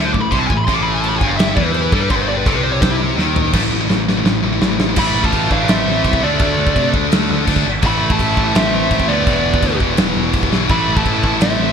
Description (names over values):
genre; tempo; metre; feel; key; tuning
heavy metal; 168 BPM; 4/4; straight; A minor; A4 = 437 Hz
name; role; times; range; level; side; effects
high-gain lead guitar; melody; 0.0-11.7 s; E4 to D6; -21 LUFS; right 1 dB; distortion, ping-pong delay
heavy high-gain guitar; riff; 0.0-11.7 s; E2 to D4; -20 LUFS; left 11 dB; distortion
scooped high-gain guitar; riff; 0.0-11.7 s; E2 to D4; -22 LUFS; right 11 dB; distortion
growling picked electric bass; bass; 0.0-11.7 s; E1 to C3; -21 LUFS; equal; overdrive
big rock drum kit; drums; 0.1-11.5 s; china cymbal, crash cymbal, kick drum, snare drum, toms; -18 LUFS; equal; gated reverb
high-gain lead guitar; second line; 5.0-11.7 s; A3 to F4; -25 LUFS; right 4 dB; distortion, ping-pong delay
room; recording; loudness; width
moderate lush hall reverb, RT60 1.7 s, small room ambience; bright 1980s-style digital production; -13 LUFS; side -7 dB against mid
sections
0.0-3.5 A section; 3.5-5.0 B section; 5.0-11.7 C section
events
lead electric guitar solo 0.0-3.5; drum fill 3.2-3.5, 3.5-5.0, 10.5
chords
0.0 Am; 3.5 A5; 5.0 Am; 6.2 D5; 7.8 Am; 9.3 E5; 10.7 Am